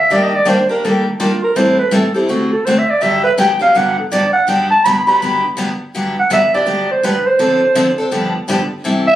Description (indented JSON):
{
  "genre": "jazz",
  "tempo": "165 BPM",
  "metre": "4/4",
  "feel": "swing 62% on 8ths",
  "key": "G major",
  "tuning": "A4 = 440 Hz",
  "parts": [
    { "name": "growling clarinet", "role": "melody", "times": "0.0-9.2 s", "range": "D4 to B5", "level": "-13 LUFS", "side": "right 1 dB", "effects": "none" },
    { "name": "picked steel-string acoustic guitar", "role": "accompaniment", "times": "0.1-9.1 s", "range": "G2 to A4", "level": "-16 LUFS", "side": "left 1 dB", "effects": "none" }
  ],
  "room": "moderate studio reverb, RT60 0.7 s",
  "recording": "recorded on a phone in the room, studio ambience, compression",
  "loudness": "-12 LUFS",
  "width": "side -13 dB against mid",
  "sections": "0.0-5.9 A section; 5.9-9.2 B section",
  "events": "clarinet solo 0.0-5.9",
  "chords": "0.1 Ebmaj7; 1.6 Am7; 2.3 D7; 3.0 Gmaj7; 7.4 Dm7; 8.1 G7"
}